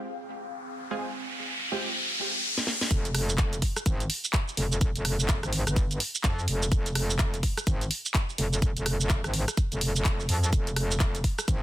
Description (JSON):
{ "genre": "bass house", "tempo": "126 BPM", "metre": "4/4", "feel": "swing 61% on 16ths", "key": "F minor", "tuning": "A4 = 441 Hz", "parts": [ { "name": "riser", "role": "sound effects", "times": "0.5-2.9 s", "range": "none", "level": "-31 LUFS", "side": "equal", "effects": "none" }, { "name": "ethereal airy pad", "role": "texture", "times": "0.0-2.0 s", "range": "C4 to G5", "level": "-42 LUFS", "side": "left 2 dB", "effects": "ensemble chorus, built-in reverb, phaser, sidechain pumping" }, { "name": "orchestra-hit-like synth stab", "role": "stabs", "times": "0.9-1.9 s", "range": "Ab3 to Ab4", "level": "-36 LUFS", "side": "right 3 dB", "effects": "built-in reverb, sidechain pumping, digital delay" }, { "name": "garage drum kit", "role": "drums", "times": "2.6-11.6 s", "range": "handclaps, hi-hat, rim click, shaker, snare drum", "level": "-30 LUFS", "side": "right 1 dB", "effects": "soft clipping on snare, studio ambience" }, { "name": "metallic wobble bass", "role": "bass", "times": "2.9-11.6 s", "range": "F1 to F2", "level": "-28 LUFS", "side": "equal", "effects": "chorus, overdrive, sidechain pumping" }, { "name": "electronic kick drum", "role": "drums", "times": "2.9-11.6 s", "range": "none", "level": "-26 LUFS", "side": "equal", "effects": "studio ambience" } ], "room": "little or no reverb", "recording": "dense, heavily limited modern master", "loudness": "-25 LUFS", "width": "side -14 dB against mid", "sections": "0.0-2.9 A section; 2.9-11.6 B section", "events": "riser 0.5-2.9; drum fill 2.5-2.9; drop 2.9-11.6", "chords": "0.0 Fmadd9; 2.9 N.C.", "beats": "0.05 0.53 | 1.00 1.48 1.96 2.43 | 2.91 3.38 3.86 4.34 | 4.81 5.29 5.76 6.24 | 6.72 7.19 7.67 8.14 | 8.62 9.10 9.57 10.05 | 10.53 11.00 11.48" }